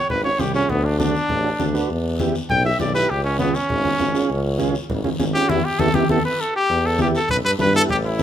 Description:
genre	latin, cumbia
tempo	200 BPM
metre	4/4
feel	straight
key	unclear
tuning	A4 = 442 Hz
part	clear trumpet	melody	0.0-8.2 s	B3 to G5	-20 LUFS	equal	none
part	warm tuba	bass	0.1-8.2 s	G#1 to G2	-24 LUFS	equal	none
part	congas	percussion	0.1-8.2 s	none	-25 LUFS	left 1 dB	none
part	guiro	percussion	0.1-8.2 s	none	-36 LUFS	left 4 dB	none
part	overdriven combo organ	accompaniment	0.2-8.2 s	B3 to B4	-25 LUFS	right 3 dB	none
room	light reverb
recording	minimal, uncompressed stereo recording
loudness	-17 LUFS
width	side -10 dB against mid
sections	0.0-6.7 A section; 6.7-8.2 B section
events	trumpet solo 0.0-6.7; band accent 5.5-6.7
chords	0.0 C#; 0.7 D; 1.9 Em; 3.1 C#; 5.5 Em

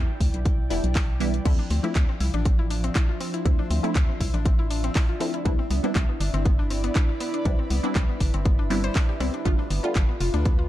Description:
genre	deep house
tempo	120 BPM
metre	4/4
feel	swing 54% on 16ths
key	D dorian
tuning	A4 = 440 Hz
part	filtered dub chord stab	stabs	0.0-10.7 s	E3 to F4	-30 LUFS	right 1 dB	phaser, sidechain pumping, dub echo
part	organ-like FM bass	bass	0.0-10.7 s	E1 to D2	-26 LUFS	equal	tube saturation, sidechain pumping
part	airy breathy pad	texture	0.0-10.7 s	F3 to C6	-35 LUFS	right 1 dB	chorus, sidechain pumping
part	electronic kick drum	drums	0.2-10.6 s	none	-22 LUFS	equal	none
part	house drum kit	drums	0.2-10.6 s	crash cymbal, handclaps, hi-hat	-34 LUFS	left 1 dB	none
part	deep dark ambient pad	sustained chords	2.8-10.7 s	F3 to G5	-36 LUFS	left 1 dB	chorus, built-in reverb, sidechain pumping
part	mallet-like synth pluck	arpeggios	1.5-10.7 s	B3 to C5	-34 LUFS	left 4 dB	chorus, sidechain pumping, digital delay
room	digital ambience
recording	dark, warm production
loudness	-21 LUFS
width	side -14 dB against mid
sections	0.0-10.7 A section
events	none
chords	0.0 Em7; 1.5 Dm9; 5.5 Cmaj9; 9.5 G9

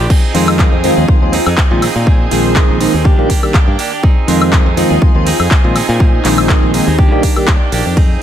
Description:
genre	filtered disco house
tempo	122 BPM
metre	4/4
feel	swing 55% on 16ths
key	F dorian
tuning	A4 = 439 Hz
part	string machine, full ensemble	sustained chords	0.0-8.2 s	Eb3 to Ab5	-20 LUFS	left 1 dB	ensemble chorus, vintage 12-bit sampler grit, sidechain pumping
part	direct-recorded clean electric guitar	riff	0.0-8.2 s	F3 to Ab4	-20 LUFS	right 6 dB	sidechain pumping
part	modern bright fingered electric bass	bass	0.0-8.2 s	Bb1 to Bb2	-16 LUFS	equal	sidechain pumping
part	electronic kick drum	drums	0.1-8.1 s	none	-11 LUFS	equal	overdrive
part	house drum kit	drums	0.1-8.1 s	crash cymbal, handclaps, hi-hat, ride cymbal, woodblock	-18 LUFS	left 1 dB	overdrive, sidechain pumping on hats, sidechain pumping on perc, sidechain pumping on cymbals
part	bell-like tine electric piano	accompaniment	0.3-7.5 s	Eb3 to Ab4	-15 LUFS	equal	phaser, sidechain pumping
room	little or no reverb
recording	none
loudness	-9 LUFS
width	side -10 dB against mid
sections	0.0-8.2 A section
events	none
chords	0.1 Fm7; 1.8 Bb9sus4; 3.1 Ebmaj7; 4.0 Fm7; 5.8 Bb9sus4; 7.0 Ebmaj7

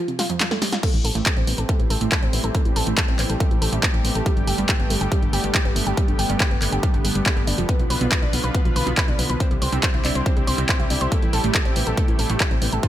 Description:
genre	uplifting trance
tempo	140 BPM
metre	4/4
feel	straight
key	A minor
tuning	A4 = 440 Hz
part	analog pluck	arpeggios	0.1-12.9 s	F2 to C5	-27 LUFS	right 2 dB	chorus, sidechain pumping, ping-pong delay
part	punchy analog drum machine	drums	0.1-12.9 s	crash cymbal, handclaps, hi-hat, snare drum	-24 LUFS	equal	none
part	lush unison pad	sustained chords	0.8-12.9 s	C3 to B4	-28 LUFS	equal	chorus, sidechain pumping
part	electronic kick drum	drums	0.8-12.9 s	none	-21 LUFS	equal	none
part	solid FM bass	bass	0.9-12.8 s	F1 to C2	-25 LUFS	equal	sidechain pumping
room	little or no reverb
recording	none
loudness	-18 LUFS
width	side -12 dB against mid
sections	0.0-12.9 A section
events	break 0.0-0.8; filter sweep on synth pluck 0.0-12.9; drum fill 0.2-0.8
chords	0.0 F; 0.8 Am7; 4.3 Gadd9; 7.7 Bdim; 9.4 Cadd9; 11.1 Am7

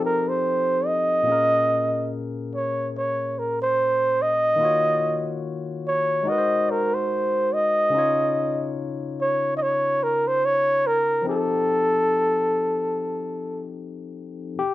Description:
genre	R&B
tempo	72 BPM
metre	4/4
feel	swing 58% on 16ths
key	Bb dorian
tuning	A4 = 440 Hz
part	mellow flugelhorn	melody	0.0-13.7 s	A4 to Eb5	-20 LUFS	right 1 dB	slapback echo
part	barky tine electric piano	accompaniment	0.0-14.7 s	Bb2 to Db5	-28 LUFS	left 5 dB	overdrive
room	light reverb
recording	rough home demo mix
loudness	-20 LUFS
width	side -15 dB against mid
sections	0.0-1.3 A section; 1.3-14.6 B section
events	none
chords	0.0 F7; 1.3 Bbm7; 4.6 Ebm7; 6.3 Ab7; 7.9 Dbadd9; 11.3 F7

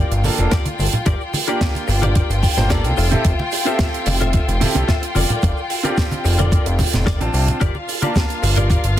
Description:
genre	nu-disco, nu disco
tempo	110 BPM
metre	4/4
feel	straight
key	unclear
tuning	A4 = 440 Hz
part	clear concert grand piano	accompaniment	0.0-9.0 s	Bb3 to A5	-25 LUFS	right 2 dB	ping-pong delay
part	rich studio string section	sustained chords	0.0-9.0 s	F4 to G5	-26 LUFS	left 2 dB	sidechain pumping
part	direct-recorded clean electric guitar	riff	0.0-8.8 s	F4 to G5	-26 LUFS	left 4 dB	ensemble chorus, ping-pong delay
part	fat analog bass	bass	0.0-9.0 s	F1 to C2	-19 LUFS	equal	sidechain pumping
part	tight funk drum kit	drums	0.1-9.0 s	hi-hat, rim click, snare drum	-24 LUFS	right 4 dB	small room ambience
part	tube shaker and congas	percussion	0.1-9.0 s	none	-24 LUFS	right 1 dB	none
part	electronic kick drum	drums	0.5-8.8 s	none	-18 LUFS	equal	small room ambience
room	little or no reverb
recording	dense, heavily limited modern master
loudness	-16 LUFS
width	side -12 dB against mid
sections	0.0-9.0 A section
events	clean electric guitar fill 2.2-3.2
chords	0.0 Bbmaj7/F; 3.0 Fmaj7; 5.2 Bbmaj7/F

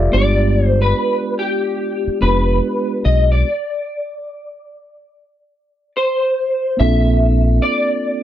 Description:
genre	R&B, neo-soul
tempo	72 BPM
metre	4/4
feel	swing 64% on 16ths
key	unclear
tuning	A4 = 440 Hz
part	mellow tine electric piano	accompaniment	0.0-8.2 s	Ab3 to F5	-20 LUFS	right 3 dB	medium stereo tremolo
part	deep dub fingered electric bass	bass	0.0-7.6 s	F1 to B1	-15 LUFS	equal	none
part	electric guitar through a small old amp	melody	0.1-8.2 s	G4 to E5	-19 LUFS	left 1 dB	ensemble chorus
room	light reverb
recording	dry, close 1970s-style studio recording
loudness	-14 LUFS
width	side -12 dB against mid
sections	0.0-6.8 A section; 6.8-8.2 B section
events	stop 3.4-6.8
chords	0.1 G7b9; 3.4 N.C.; 6.8 Bbmaj9

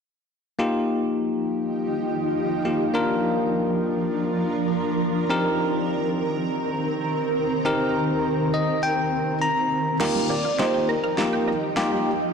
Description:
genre	dance-pop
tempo	102 BPM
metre	4/4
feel	straight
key	unclear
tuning	A4 = 440 Hz
part	bell-like tine electric piano	accompaniment	0.6-12.1 s	Bb3 to Bb5	-24 LUFS	left 2 dB	none
part	granular cloud pad	sustained chords	1.2-12.3 s	Eb3 to Bb4	-25 LUFS	right 2 dB	built-in reverb
part	soft struck synth lead	melody	10.0-11.6 s	Bb4 to D5	-26 LUFS	right 3 dB	chorus, ping-pong delay
part	wide unison pluck	arpeggios	10.0-12.0 s	Eb3 to F6	-32 LUFS	right 5 dB	flanger, ping-pong delay
part	pop drum kit	drums	10.0-11.9 s	crash cymbal, snare drum	-30 LUFS	equal	none
room	moderate lush hall reverb, RT60 2.3 s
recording	blown-out, overdriven recording, overdrive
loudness	-21 LUFS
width	side -6 dB against mid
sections	0.6-10.0 A section; 10.0-12.3 B section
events	tine electric piano fill 8.2-10.0; build-up 10.0-12.3; drum fill 10.0-12.3; filter sweep 10.0-12.3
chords	0.6 Ebadd9; 2.9 Bb; 5.3 Cm7; 10.0 Ebadd9

